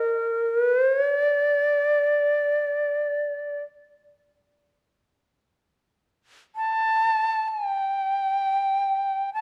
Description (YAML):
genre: japanese traditional, Japanese chamber music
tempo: free time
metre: none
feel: none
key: unclear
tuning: A4 = 440 Hz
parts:
  - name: breathy bright shakuhachi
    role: solo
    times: 0.0-9.4 s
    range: D5 to A5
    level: -24 LUFS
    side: equal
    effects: none
room: moderate recital hall reverb, RT60 1.5 s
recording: dark, warm production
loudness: -24 LUFS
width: mono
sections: 0.0-9.4 A section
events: none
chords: none